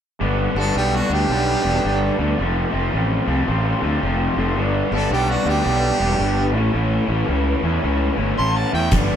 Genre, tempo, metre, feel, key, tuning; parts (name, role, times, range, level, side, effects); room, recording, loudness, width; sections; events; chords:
blues rock power trio and southern rock; 110 BPM; 4/4; swing 63% on 8ths; A4 = 440 Hz
raw garage guitar; riff; 0.2-9.2 s; F2 to E4; -21 LUFS; left 1 dB; overdrive
fuzz fingered electric bass; bass; 0.2-9.2 s; E1 to E2; -21 LUFS; equal; overdrive
bright harmonica; melody; 0.6-8.9 s; F#4 to C6; -22 LUFS; right 2 dB; overdrive
biting lead guitar; second line; 0.6-8.9 s; D4 to A5; -30 LUFS; right 2 dB; overdrive
oversized low-tuned drum kit; drums; 8.9-9.1 s; hi-hat, kick drum; -17 LUFS; equal
moderate small room reverb, RT60 0.5 s; band playing live in one room; -17 LUFS; side -9 dB against mid
0.2-9.2 A section
0.2 G; 2.4 F; 4.6 G; 6.5 A